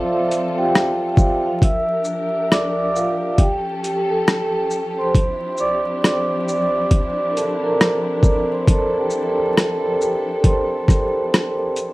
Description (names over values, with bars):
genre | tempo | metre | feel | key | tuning
lo-fi hip hop | 68 BPM | 4/4 | swing 61% on 16ths | D minor | A4 = 440 Hz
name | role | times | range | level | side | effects
vibraphone with soft mallets | accompaniment | 0.0-11.9 s | F4 to E6 | -19 LUFS | right 1 dB | cassette tape, low-pass filter
dark studio string section | sustained chords | 0.0-11.9 s | F3 to Bb4 | -27 LUFS | left 2 dB | low-pass filter
boom bap sampler-style drum kit | drums | 0.3-11.9 s | hi-hat, kick drum, rim click, shaker | -16 LUFS | equal | overdrive, vintage 12-bit sampler grit
room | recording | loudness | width
moderate studio reverb, RT60 0.6 s | vinyl crackle | -16 LUFS | side -20 dB against mid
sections
0.0-11.9 A section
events
vibraphone solo 0.0-11.9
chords
0.0 Fmaj7; 1.6 Em7b5; 3.4 A7alt; 5.1 Dm11